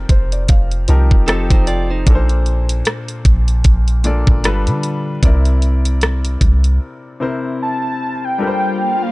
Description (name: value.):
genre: contemporary R&B.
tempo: 76 BPM.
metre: 4/4.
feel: swing 58% on 16ths.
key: unclear.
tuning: A4 = 439 Hz.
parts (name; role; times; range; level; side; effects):
warm grand piano; accompaniment; 0.0-9.1 s; Bb2 to A5; -22 LUFS; left 3 dB; none.
soft 808-style bass; bass; 0.0-6.8 s; F1 to D3; -15 LUFS; equal; none.
trap drum kit; drums; 0.1-6.8 s; hi-hat, kick drum, rim click; -14 LUFS; equal; vintage 12-bit sampler grit.
direct-recorded clean electric guitar; arpeggios; 1.3-2.3 s; C4 to D5; -25 LUFS; right 4 dB; analog delay.
warm velvety synth lead; melody; 7.6-9.1 s; F5 to A5; -18 LUFS; equal; chorus.
ethereal airy pad; sustained chords; 8.6-9.1 s; G3 to F4; -24 LUFS; left 1 dB; ensemble chorus, built-in reverb.
room: little or no reverb.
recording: dry, gritty hardware recording, transformer saturation, cassette tape.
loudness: -13 LUFS.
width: side -21 dB against mid.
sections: 0.0-8.4 A section.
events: grand piano fill 0.0-2.1; break 6.8-8.4.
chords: 0.0 F9sus4; 1.3 F9; 2.1 Bbmaj9; 4.4 G9; 5.2 C9; 8.4 Gm11.